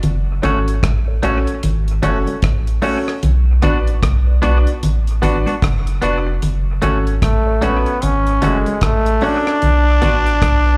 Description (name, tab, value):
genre	roots reggae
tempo	75 BPM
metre	4/4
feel	swing 61% on 16ths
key	unclear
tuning	A4 = 440 Hz
part	round analog bass	bass	0.0-10.8 s	F1 to B1	-19 LUFS	equal	none
part	deep reggae drum kit	drums	0.0-10.7 s	hi-hat, kick drum, rim click	-23 LUFS	equal	dub echo
part	congas	percussion	0.0-10.7 s	none	-26 LUFS	equal	none
part	semi-hollow electric guitar	accompaniment	0.4-10.2 s	A3 to F#4	-26 LUFS	equal	tape echo, slapback echo
part	clear concert grand piano	stabs	0.4-10.7 s	C#4 to D5	-26 LUFS	equal	slapback echo
part	brilliant trombone	melody	7.2-10.8 s	G#3 to D4	-19 LUFS	equal	tape echo, slapback echo
room	little or no reverb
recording	live gig heard through the venue's PA, club reverb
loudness	-16 LUFS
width	mono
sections	0.0-10.8 A section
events	none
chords	0.0 F#m; 3.2 Bm; 6.4 F#m; 9.6 Bm